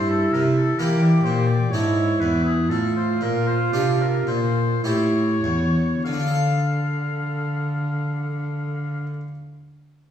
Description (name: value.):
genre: classical, baroque-style sonata movement with continuo.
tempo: 48-67 BPM.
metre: 3/4.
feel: straight.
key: D minor.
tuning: A4 = 440 Hz.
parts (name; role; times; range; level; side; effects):
clear oboe; melody; 0.0-9.1 s; G#4 to F5; -29 LUFS; left 4 dB; none.
silver concert flute; second line; 0.0-9.1 s; E4 to A4; -25 LUFS; right 3 dB; none.
harpsichord; accompaniment; 0.0-9.3 s; E2 to F5; -26 LUFS; left 1 dB; none.
warm cello; bass; 0.0-9.1 s; E2 to E3; -23 LUFS; equal; none.
room: wet stone room reverb, RT60 1.3 s.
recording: heard from further back in the room, studio reverb.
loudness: -19 LUFS.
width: side -9 dB against mid.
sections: 0.0-6.1 A section; 6.1-9.8 B section.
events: slowing down 0.0-6.1.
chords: 0.0 Edim/G; 1.7 E7/G#; 2.7 Dm/A; 4.8 A7; 6.1 Dm.